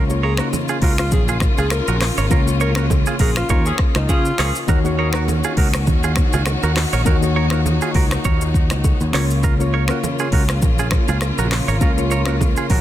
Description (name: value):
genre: afrobeats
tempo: 101 BPM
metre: 4/4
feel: swing 55% on 16ths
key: unclear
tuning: A4 = 439 Hz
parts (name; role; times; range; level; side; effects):
- soft electric-piano-like synth keys; accompaniment; 0.0-12.8 s; Db3 to Db5; -24 LUFS; left 3 dB; chorus
- warm studio string section; sustained chords; 0.0-12.8 s; Db3 to Gb4; -27 LUFS; left 1 dB; none
- direct-recorded clean electric guitar; riff; 0.0-12.8 s; F4 to Db5; -25 LUFS; right 7 dB; ping-pong delay
- fingered electric bass; bass; 0.0-12.8 s; Ab1 to Db3; -20 LUFS; equal; none
- deep house drum kit; drums; 0.1-12.8 s; finger snaps, handclaps, hi-hat, kick drum, rim click, shaker; -19 LUFS; equal; soft clipping on snare
- bongos and congas; percussion; 0.1-12.8 s; none; -29 LUFS; right 6 dB; none
- breathy alto saxophone; melody; 0.2-4.5 s; Eb4 to Bb4; -27 LUFS; equal; ping-pong delay
- mellow horn section; second line; 3.7-4.6 s; F3 to Ab4; -29 LUFS; left 1 dB; ping-pong delay
room: small room ambience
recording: dense, heavily limited modern master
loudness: -15 LUFS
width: side -12 dB against mid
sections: 0.0-12.8 A section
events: band accent 2.3-4.7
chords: 0.0 Db6; 4.7 Ebm7; 9.1 Db6